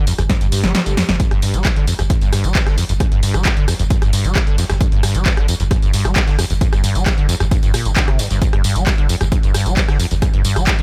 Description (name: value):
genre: driving peak-time techno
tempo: 133 BPM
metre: 4/4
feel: straight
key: unclear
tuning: A4 = 440 Hz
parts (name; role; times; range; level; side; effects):
- acid bass, saw; riff; 0.0-10.8 s; F2 to G3; -23 LUFS; equal; ensemble chorus, cassette tape, sidechain pumping, digital delay
- saturated sub bass; bass; 0.0-10.8 s; G1; -22 LUFS; equal; tube saturation, sidechain pumping, low-pass filter
- breakbeat sampler-style drum kit; drums; 0.1-10.8 s; hi-hat, snare drum; -36 LUFS; equal; none
- punchy analog drum machine; drums; 0.1-10.8 s; handclaps, hi-hat, rim click, snare drum, tambourine; -24 LUFS; equal; sidechain pumping on hats, sidechain pumping on perc
- electronic kick drum; drums; 0.3-10.8 s; none; -19 LUFS; equal; none
- swell; sound effects; 0.5-1.2 s; none; -35 LUFS; equal; none
room: digital ambience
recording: none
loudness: -16 LUFS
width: mono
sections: 0.0-10.8 A section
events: drum fill 0.3-1.2; swell 0.5-1.2; kick drops out 0.7-1.2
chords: 0.0 G5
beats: 0.30 0.75 | 1.20 1.65 2.10 2.55 | 3.00 3.45 3.90 4.36 | 4.81 5.26 5.71 6.16 | 6.61 7.06 7.51 7.96 | 8.42 8.87 9.32 9.77 | 10.22 10.67